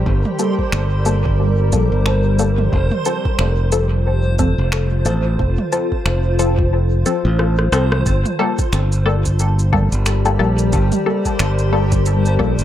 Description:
ambient dub; 90 BPM; 4/4; swing 58% on 16ths; G minor; A4 = 440 Hz
granular cloud pad; sustained chords; 0.0-12.6 s; G3 to A5; -23 LUFS; left 1 dB; built-in reverb
modern bright fingered electric bass; bass; 0.0-12.6 s; F1 to C2; -16 LUFS; equal
backwards swelling texture; texture; 0.0-12.6 s; C5; -29 LUFS; right 2 dB; built-in reverb
electronic kick drum; drums; 0.1-12.5 s; -21 LUFS; equal; overdrive
organic electronic drum kit; drums; 0.3-12.6 s; finger snaps, rim click, shaker, toms; -25 LUFS; right 1 dB; overdrive, dub echo
filtered dub chord stab; stabs; 0.4-12.5 s; F3 to A4; -22 LUFS; left 3 dB; phaser, dub echo
light reverb; echo-heavy mix; -14 LUFS; side -12 dB against mid
0.0-8.1 A section; 8.1-12.6 B section
kick drops out 6.7-8.1; drum fill 7.4-8.1
0.0 Gmadd9; 2.7 F; 8.1 Gmadd9

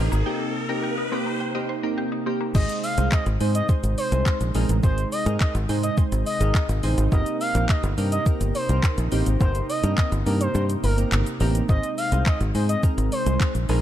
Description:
dance-pop; 105 BPM; 4/4; straight; Ab major; A4 = 440 Hz
glassy digital keys; accompaniment; 0.0-13.8 s; Ab3 to C5; -28 LUFS; right 2 dB; chorus, sidechain pumping, low-pass filter
airy breathy pad; sustained chords; 0.0-13.8 s; C3 to Eb4; -33 LUFS; equal; chorus, sidechain pumping, low-pass filter
mallet-like synth pluck; arpeggios; 0.0-2.5 s; Bb3 to G5; -34 LUFS; left 2 dB; chorus, sidechain pumping, low-pass filter, ping-pong delay
fingered electric bass; bass; 0.0-13.8 s; G1 to Ab2; -22 LUFS; equal; sidechain pumping
riser; sound effects; 0.0-1.4 s; -30 LUFS; equal
smooth R&B drum kit; drums; 0.1-13.8 s; crash cymbal, handclaps, hi-hat, kick drum, shaker; -24 LUFS; equal
expressive portamento lead; melody; 2.5-13.5 s; Bb4 to F5; -28 LUFS; left 1 dB; chorus, sidechain pumping
little or no reverb; dark, warm production; -20 LUFS; side -12 dB against mid
0.0-2.5 A section; 2.5-13.8 B section
build-up 0.0-2.5; drum fill 0.0; riser 0.0-2.5; break 0.3-2.5; drop 2.5-13.8; kick muted 10.5-11.7
0.0 Cm7; 2.5 Ab; 7.1 Cm7/G; 11.7 Ab

